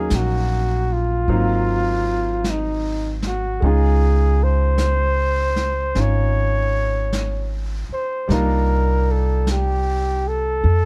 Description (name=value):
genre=jazz ballad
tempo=51 BPM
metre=4/4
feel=swing 66% on 8ths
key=unclear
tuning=A4 = 438 Hz
part: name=breathy flugelhorn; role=melody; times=0.0-10.9 s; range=Eb4 to Db5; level=-25 LUFS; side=equal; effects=none
part: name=clear grand piano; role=accompaniment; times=0.0-10.7 s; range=Gb3 to F5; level=-29 LUFS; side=equal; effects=none
part: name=upright bass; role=bass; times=0.0-10.9 s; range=Ab1 to F2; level=-22 LUFS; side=equal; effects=none
part: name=jazz brush drum kit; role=drums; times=0.1-10.9 s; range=brushed snare drum, hi-hat, snare drum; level=-34 LUFS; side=equal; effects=none
room=little or no reverb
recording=close, detailed microphones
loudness=-20 LUFS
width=mono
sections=0.0-10.9 A section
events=none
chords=0.0 Ebm9; 1.3 Ab13; 3.6 Dbmaj7; 8.3 Cm11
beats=0.11 1.28 2.45 | 3.62 4.79 5.96 7.13 | 8.30 9.47 10.65